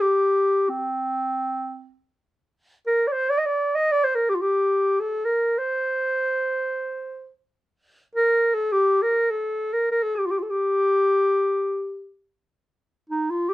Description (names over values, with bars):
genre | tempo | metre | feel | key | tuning
Turkish makam ensemble | free time | none | none | C makam huseyni | A4 = 439 Hz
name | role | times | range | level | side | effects
mellow clarinet | solo | 0.0-13.5 s | C4 to Eb5 | -20 LUFS | equal | none
room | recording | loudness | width
light reverb | band playing live in one room | -20 LUFS | side -17 dB against mid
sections
0.0-2.3 A section; 2.3-13.5 A section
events
none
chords
none